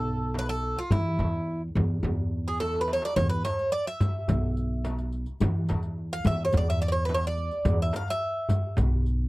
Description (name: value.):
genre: Turkish makam ensemble.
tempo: 107 BPM.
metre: 4/4.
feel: straight.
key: E makam hicaz.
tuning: A4 = 439 Hz.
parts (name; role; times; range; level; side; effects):
Greek bouzouki; melody; 0.0-8.7 s; E4 to F5; -29 LUFS; right 1 dB; none.
upright bass; bass; 0.0-9.3 s; B1 to E3; -28 LUFS; equal; none.
darbuka; percussion; 0.3-8.9 s; none; -31 LUFS; equal; none.
frame drum; percussion; 0.4-8.9 s; none; -32 LUFS; right 1 dB; none.
riq; percussion; 3.2-9.1 s; none; -38 LUFS; left 5 dB; none.
room: light reverb.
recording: dark, warm production.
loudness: -25 LUFS.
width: side -20 dB against mid.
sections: 0.0-9.3 A section.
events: drum fill 2.6-3.2.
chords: none.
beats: 0.35 | 0.92 1.48 2.04 2.60 | 3.17 3.73 4.29 4.85 | 5.41 5.98 6.54 7.10 | 7.66 8.22 8.78.